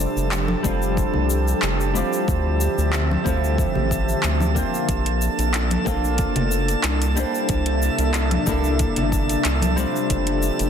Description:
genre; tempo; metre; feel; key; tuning
sunset chillout; 92 BPM; 4/4; swing 54% on 16ths; F major; A4 = 445 Hz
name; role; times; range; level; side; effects
flamenco guitar; accompaniment; 0.0-10.7 s; G3 to D5; -26 LUFS; left 3 dB; auto-pan, low-pass filter, digital delay
airy breathy pad; sustained chords; 0.0-10.7 s; C3 to E5; -26 LUFS; right 1 dB; chorus
round analog bass; bass; 0.0-10.7 s; F1 to D2; -22 LUFS; equal; none
drifting glass-harmonics texture; texture; 0.0-10.7 s; A5; -30 LUFS; right 5 dB; chorus, built-in reverb
deep house drum kit; drums; 0.2-10.7 s; handclaps, hi-hat, shaker; -27 LUFS; left 1 dB; overdrive
congas; percussion; 0.5-9.7 s; none; -30 LUFS; left 2 dB; none
electronic kick drum; drums; 0.6-10.2 s; none; -26 LUFS; equal; overdrive
room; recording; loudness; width
light reverb, digital ambience; dense, heavily limited modern master; -19 LUFS; side -8 dB against mid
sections
0.0-10.7 A section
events
none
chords
0.0 F69; 2.3 Dm11; 4.9 Bbmaj9; 7.2 C13; 10.1 F69

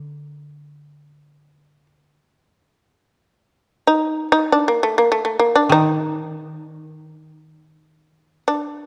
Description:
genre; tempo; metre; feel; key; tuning
japanese traditional, Japanese chamber music; free time; none; none; unclear; A4 = 441 Hz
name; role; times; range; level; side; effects
shamisen; melody; 0.0-8.9 s; A3 to Eb4; -18 LUFS; equal; none
koto; accompaniment; 0.0-8.9 s; D3 to Eb3; -27 LUFS; equal; none
room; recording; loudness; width
moderate concert hall reverb, RT60 1.9 s; dark, warm production; -18 LUFS; mono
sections
0.0-8.9 A section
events
none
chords
none

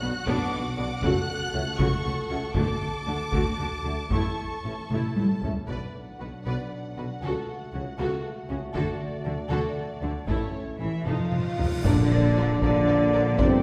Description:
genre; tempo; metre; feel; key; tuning
cinematic, epic orchestral film score; 78 BPM (dotted quarters); 6/8; straight; B minor; A4 = 439 Hz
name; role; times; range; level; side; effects
warm symphonic violin section; melody; 0.0-13.6 s; C5 to F#6; -38 LUFS; equal; none
warm symphonic violin section; second line; 0.0-13.5 s; C#4 to A5; -39 LUFS; equal; none
warm symphonic viola section; accompaniment; 0.0-13.5 s; F3 to B4; -36 LUFS; equal; none
mellow French horn section; sustained chords; 0.0-13.6 s; F#3 to F#4; -33 LUFS; equal; none
mellow tuba; bass; 0.0-13.6 s; F1 to D2; -35 LUFS; equal; none
rich symphonic cello section; bass; 0.0-13.6 s; F2 to F3; -36 LUFS; equal; none
warm symphonic double bass section; bass; 0.0-13.6 s; F1 to D2; -35 LUFS; equal; none
taiko ensemble; drums; 0.3-13.6 s; none; -31 LUFS; equal; none
cymbal swell and impact; sound effects; 11.3-13.4 s; none; -39 LUFS; equal; none
dark trumpet section; stabs; 11.8-13.6 s; D5; -37 LUFS; equal; none
warm trombone section; sustained chords; 11.9-13.6 s; F3 to Bb3; -37 LUFS; equal; none
room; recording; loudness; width
wet recital hall reverb, RT60 1.7 s; recorded in a church or concert hall; -27 LUFS; mono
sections
0.0-5.7 A section; 5.7-11.8 B section; 11.8-13.6 C section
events
drum fill 4.9-5.7, 11.1-11.8; cymbal swell 11.3-11.8; impact 11.8-13.4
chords
0.0 Bm; 1.0 F#m/C#; 2.6 D; 4.1 A; 5.7 Bm; 7.2 F#m/C#; 8.7 D; 10.3 A; 11.1 F7; 11.8 Bb

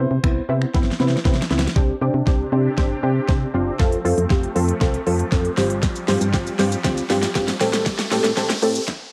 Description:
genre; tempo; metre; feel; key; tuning
dance-pop; 118 BPM; 4/4; straight; C major; A4 = 444 Hz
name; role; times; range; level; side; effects
warm concert grand piano; melody; 0.0-1.2 s; C5; -41 LUFS; equal; cassette tape, tape echo
punchy chord stab; accompaniment; 0.0-8.8 s; B3 to A4; -25 LUFS; equal; chorus, sidechain pumping, cassette tape
solid FM bass; bass; 0.0-8.8 s; F1 to C3; -25 LUFS; equal; sidechain pumping
pop drum kit; drums; 0.2-9.0 s; finger snaps, hi-hat, kick drum, shaker, snare drum; -24 LUFS; equal; none
filtered supersaw swell; sustained chords; 1.8-8.9 s; C3 to G4; -33 LUFS; equal; sidechain pumping, cassette tape
riser; sound effects; 3.6-8.9 s; none; -36 LUFS; equal; none
room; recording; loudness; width
light reverb, digital ambience; home recording on cassette, high-pass filter; -20 LUFS; mono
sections
0.0-1.8 A section; 1.8-9.1 B section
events
drum fill 0.7-1.8, 1.8-8.9; build-up 1.8-9.1; filter sweep 1.8-9.1; riser 3.6-9.1; stop 8.9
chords
0.0 Cmaj7; 1.8 Csus2; 3.8 F; 5.6 G7sus4; 7.6 Am7

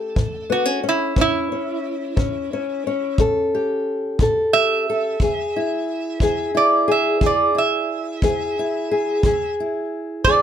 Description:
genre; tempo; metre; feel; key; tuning
acoustic country blues, solo or duo; 60 BPM (dotted quarters); 12/8; straight; E mixolydian; A4 = 440 Hz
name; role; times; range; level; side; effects
metal-body resonator slide guitar; melody; 0.0-10.4 s; E4 to E5; -20 LUFS; right 4 dB; plate reverb
fingerpicked old ladder-braced acoustic guitar; accompaniment; 0.0-10.4 s; A2 to A4; -21 LUFS; left 2 dB; none
kick drum; drums; 0.2-10.4 s; none; -21 LUFS; equal; none
room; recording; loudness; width
light reverb; none; -18 LUFS; side -9 dB against mid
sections
0.0-10.4 A section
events
none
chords
0.0 A7; 5.2 E

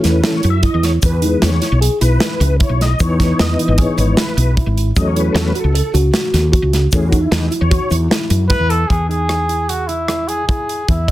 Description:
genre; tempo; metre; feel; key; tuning
progressive instrumental, band music in an uneven meter; 152 BPM; 5/4; straight; E major; A4 = 440 Hz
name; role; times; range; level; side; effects
tonewheel organ; accompaniment; 0.0-8.0 s; E3 to E5; -20 LUFS; left 2 dB; chorus vibrato, slow rotary speaker, plate reverb
tine electric piano; arpeggios; 0.0-11.1 s; D#4 to D#5; -22 LUFS; right 2 dB; phaser, plate reverb, tape echo
woody fretless electric bass; bass; 0.0-11.1 s; G#1 to F#2; -16 LUFS; equal; analog chorus
modern studio drum kit; drums; 0.0-11.1 s; hi-hat, kick drum, rim click, snare drum; -18 LUFS; equal; none
egg shaker; percussion; 0.0-8.4 s; none; -33 LUFS; left 4 dB; none
mellow trumpet; melody; 8.5-11.1 s; E4 to B4; -19 LUFS; equal; plate reverb
room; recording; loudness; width
light reverb; dense, heavily limited modern master; -13 LUFS; side -15 dB against mid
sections
0.0-8.9 A section; 8.9-11.1 B section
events
tonewheel organ solo 0.0-8.9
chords
0.0 A/E; 1.0 E; 3.0 C#m7; 5.0 F#m; 6.9 A/E; 8.9 Emaj7

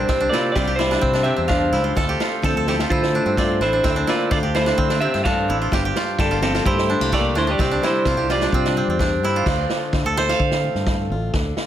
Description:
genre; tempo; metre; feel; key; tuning
highlife guitar band; 128 BPM; 4/4; straight; D minor; A4 = 440 Hz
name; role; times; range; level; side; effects
clean electric guitar; melody; 0.0-9.0 s; C4 to F5; -22 LUFS; right 2 dB; slapback echo
dark trombone; second line; 0.0-9.0 s; D3 to D4; -29 LUFS; left 5 dB; none
picked plugged-in swing-style acoustic guitar; accompaniment; 0.0-11.7 s; G2 to G4; -30 LUFS; left 6 dB; none
koto; arpeggios; 0.0-11.7 s; A3 to F5; -23 LUFS; right 2 dB; slapback echo
fingered electric bass; bass; 0.0-11.5 s; G1 to D3; -25 LUFS; equal; none
vintage drum kit; drums; 0.1-11.7 s; crash cymbal, kick drum, snare drum; -24 LUFS; equal; none
room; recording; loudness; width
light reverb; none; -17 LUFS; side -11 dB against mid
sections
0.0-9.5 A section; 9.5-11.7 B section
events
koto solo 9.5-11.7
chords
0.1 Csus2; 2.0 Dm7; 5.7 Gmadd9; 7.6 Csus2; 9.5 Dm7

